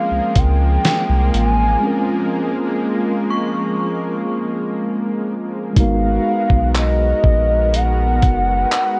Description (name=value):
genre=contemporary R&B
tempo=61 BPM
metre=4/4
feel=straight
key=unclear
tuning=A4 = 440 Hz
part: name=hollow clarinet-like synth lead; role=melody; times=0.0-9.0 s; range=D#5 to G#5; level=-23 LUFS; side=equal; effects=chorus, tape echo
part: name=mellow tine electric piano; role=accompaniment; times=0.0-9.0 s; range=G#3 to A#4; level=-25 LUFS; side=equal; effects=none
part: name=lush unison pad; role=sustained chords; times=0.0-9.0 s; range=E#3 to A#4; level=-26 LUFS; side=equal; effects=chorus, sidechain pumping
part: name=synth chime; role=texture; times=0.0-6.2 s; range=B#5 to C#6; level=-32 LUFS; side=equal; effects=ensemble chorus, phaser, tape echo
part: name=round analog bass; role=bass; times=0.1-8.7 s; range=F#1 to C#2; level=-20 LUFS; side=equal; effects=none
part: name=dusty soul sampler-style drum kit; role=drums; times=0.4-8.9 s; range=handclaps, hi-hat, kick drum, snare drum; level=-18 LUFS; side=equal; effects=none
room=light reverb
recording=worn, warbling old tape, cassette tape, warbly pitch drift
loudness=-18 LUFS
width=mono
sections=0.0-5.8 A section; 5.8-9.0 B section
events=break 1.8-5.8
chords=0.0 A#m9; 5.8 G#m9